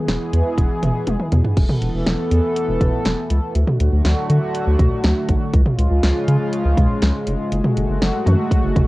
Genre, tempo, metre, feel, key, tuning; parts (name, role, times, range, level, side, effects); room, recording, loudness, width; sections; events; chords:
synth-pop; 121 BPM; 4/4; straight; A4 = 443 Hz
chorused pulse-width pad; sustained chords; 0.0-8.9 s; C#3 to A4; -22 LUFS; equal; cassette tape
round analog bass; bass; 0.1-8.8 s; E1 to D3; -18 LUFS; equal
house drum kit; drums; 0.1-8.9 s; crash cymbal, hi-hat, kick drum, snare drum, toms; -19 LUFS; equal; cassette tape
light reverb; home recording on cassette; -16 LUFS; side -19 dB against mid
0.0-1.6 A section; 1.6-8.9 B section
drum fill 1.1-1.6
0.0 E; 1.6 Esus4; 3.6 D; 5.5 C#; 7.5 F#madd9